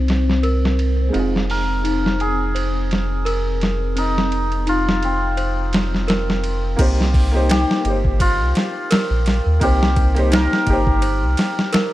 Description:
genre	trip hop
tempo	85 BPM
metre	4/4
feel	swing 56% on 16ths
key	C minor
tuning	A4 = 441 Hz
part	felt-muted upright piano	accompaniment	0.0-11.9 s	Ab3 to C5	-25 LUFS	right 1 dB	tremolo, tape echo
part	warbly tape-like pad	sustained chords	0.0-6.8 s	C4 to C5	-28 LUFS	left 1 dB	chorus, built-in reverb
part	worn celesta	arpeggios	0.0-11.9 s	C4 to C5	-26 LUFS	equal	low-pass filter, tape echo
part	soft dub sub bass	bass	0.0-11.4 s	F1 to Eb2	-20 LUFS	equal	tube saturation
part	boom bap sampler-style drum kit	drums	0.1-11.9 s	crash cymbal, hi-hat, kick drum, ride cymbal, snare drum	-21 LUFS	equal	low-pass filter on cymbals, low-pass filter on snare, low-pass filter on hats, low-pass filter on kick
part	hammered dulcimer	melody	1.5-11.9 s	C4 to Bb4	-24 LUFS	equal	tape echo
room	little or no reverb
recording	dark, warm production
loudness	-16 LUFS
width	side -15 dB against mid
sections	0.0-6.8 A section; 6.8-11.9 B section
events	filter sweep on celesta 0.0-6.8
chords	0.0 Cm7; 1.1 Fm7; 6.8 Cm7

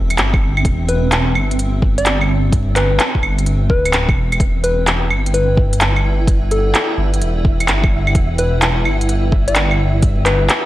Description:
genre	future garage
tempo	128 BPM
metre	4/4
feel	swing 66% on 16ths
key	E minor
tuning	A4 = 440 Hz
part	granular cloud pad	sustained chords	0.0-10.7 s	C4 to G5	-25 LUFS	right 2 dB	built-in reverb, vintage 12-bit sampler grit, sidechain pumping
part	dark detuned saw bass	bass	0.0-10.5 s	D1 to G1	-17 LUFS	equal	sidechain pumping
part	organic electronic drum kit	drums	0.1-10.6 s	claves, handclaps, hi-hat	-18 LUFS	equal	overdrive
part	electronic kick drum	drums	0.3-10.2 s	none	-16 LUFS	equal	overdrive
part	soft struck synth lead	melody	0.9-10.5 s	A4 to D5	-22 LUFS	left 2 dB	chorus, cassette tape, tape echo
part	flickering grainy texture	texture	5.2-10.7 s	E5	-31 LUFS	equal	built-in reverb
room	little or no reverb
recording	dry, gritty hardware recording, vinyl crackle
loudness	-13 LUFS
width	side -15 dB against mid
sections	0.0-10.7 A section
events	none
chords	0.0 C/E; 4.4 Em7

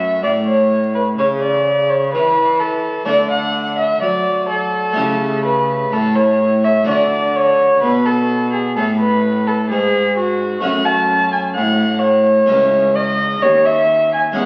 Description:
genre	classical, baroque-style sonata movement with continuo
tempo	64 BPM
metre	4/4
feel	straight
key	C# minor from 10.6 s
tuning	A4 = 436 Hz
part	dark violin	melody	0.0-14.5 s	F#4 to A5	-17 LUFS	equal	none
part	harpsichord	accompaniment	0.0-14.5 s	C#2 to A4	-22 LUFS	equal	none
part	rich cello	bass	0.0-14.5 s	C#2 to F#3	-27 LUFS	equal	none
room	wet recital hall reverb, RT60 1.7 s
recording	very old 78 rpm record, vinyl crackle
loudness	-16 LUFS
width	mono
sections	0.0-14.5 A section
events	none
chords	0.0 F#m; 3.1 D; 5.0 A7/C#; 6.9 D; 10.6 F#m; 12.5 C#m

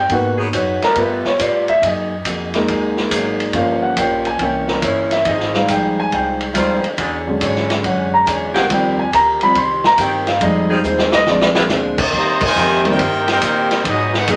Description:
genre	jazz, big band swing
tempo	140 BPM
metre	4/4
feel	swing 67% on 8ths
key	Eb major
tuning	A4 = 439 Hz
part	warm concert grand piano	accompaniment	0.0-14.4 s	D3 to C6	-19 LUFS	equal	none
part	clear saxophone section	sustained chords	0.0-13.2 s	Db3 to A4	-25 LUFS	equal	none
part	upright bass	bass	0.0-14.4 s	G1 to Bb2	-28 LUFS	equal	none
part	picked acoustic archtop guitar	accompaniment	0.1-14.4 s	Ab2 to Db5	-27 LUFS	equal	none
part	vintage drum kit	drums	0.1-14.4 s	crash cymbal, hi-hat, kick drum, ride cymbal, snare drum	-23 LUFS	equal	none
part	brilliant trumpet section	melody	12.2-14.4 s	Cb4 to Bb5	-20 LUFS	equal	none
part	clear trombone section	second line	12.2-14.4 s	Bb2 to G4	-26 LUFS	equal	none
room	wet studio reverb, RT60 0.6 s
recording	none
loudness	-17 LUFS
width	mono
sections	0.0-12.1 A section; 12.1-14.4 B section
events	grand piano solo 0.0-12.1; drum fill 10.9-11.7; band accent 12.4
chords	0.1 Abm7; 1.0 G9; 1.8 Gb69; 3.5 Gm7b5; 4.4 C7b9; 5.3 Fm7; 7.0 E13; 8.7 Eb6; 10.4 Fm7; 11.3 Bb7; 12.1 Eb6; 13.8 Abm7

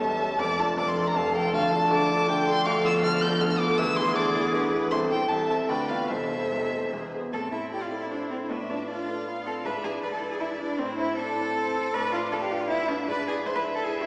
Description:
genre	quick classical-period movement for piano quintet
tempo	158 BPM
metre	3/4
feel	rubato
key	A minor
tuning	A4 = 438 Hz
part	rich violin	melody	0.0-14.1 s	B4 to G6	-29 LUFS	equal	none
part	clear violin	second line	0.0-14.1 s	A4 to A5	-33 LUFS	equal	none
part	rich cello	second line	0.0-14.1 s	B2 to C5	-31 LUFS	equal	none
part	rich viola	accompaniment	0.0-14.1 s	A3 to B4	-31 LUFS	equal	none
part	warm grand piano	accompaniment	0.0-14.1 s	E1 to C5	-29 LUFS	equal	none
room	wet scoring stage reverb, RT60 2.0 s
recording	heard from further back in the room, small speaker sound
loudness	-23 LUFS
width	side -31 dB against mid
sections	0.0-7.3 A section; 7.3-14.1 B section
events	none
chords	0.4 Dm/F; 1.5 Dm; 2.7 Bm7b5/D; 3.8 E7/D; 4.9 Am/C; 5.7 Bdim/D; 6.1 Am/E; 6.9 E; 7.3 Am; 8.5 Bm7b5/A; 9.6 E7/G#; 10.8 Am; 11.9 Bm7b5/A; 13.1 E7/G#

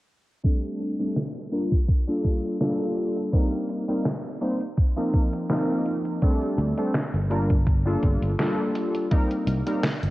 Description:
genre	vaporwave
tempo	83 BPM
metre	4/4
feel	swing 54% on 16ths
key	G minor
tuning	A4 = 437 Hz
part	warbly lo-fi synth keys	accompaniment	0.4-9.8 s	F3 to C5	-25 LUFS	equal	analog chorus, cassette tape, analog delay
part	detuned 8-bit digital drum machine	drums	0.4-10.1 s	hi-hat, snare drum	-29 LUFS	equal	cassette tape
part	electronic kick drum	drums	0.4-9.3 s	none	-21 LUFS	equal	overdrive, cassette tape
part	fingered electric bass	bass	6.6-10.1 s	G1 to D2	-24 LUFS	equal	none
room	light reverb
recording	home recording on cassette, low-pass filter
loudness	-22 LUFS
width	side -18 dB against mid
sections	0.4-10.1 A section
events	filter sweep 0.4-10.1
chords	0.4 D7sus4; 1.5 Gm9; 3.3 Cm7; 4.8 F7sus4; 6.2 D7sus4; 7.3 Gm9; 9.1 Cm7

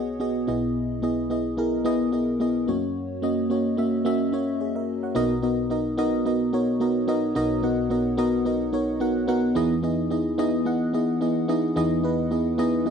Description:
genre	pop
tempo	109 BPM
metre	4/4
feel	swing 55% on 16ths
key	B major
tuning	A4 = 438 Hz
part	FM electric piano with soft pad layer	solo	0.0-12.9 s	B1 to F#5	-22 LUFS	equal	chorus
room	light reverb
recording	dry, close 1970s-style studio recording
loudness	-22 LUFS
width	side -7 dB against mid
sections	0.0-5.2 A section; 5.2-12.9 B section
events	none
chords	0.5 Emaj7/B; 2.7 F#; 5.2 Bmaj7; 9.6 Emaj7

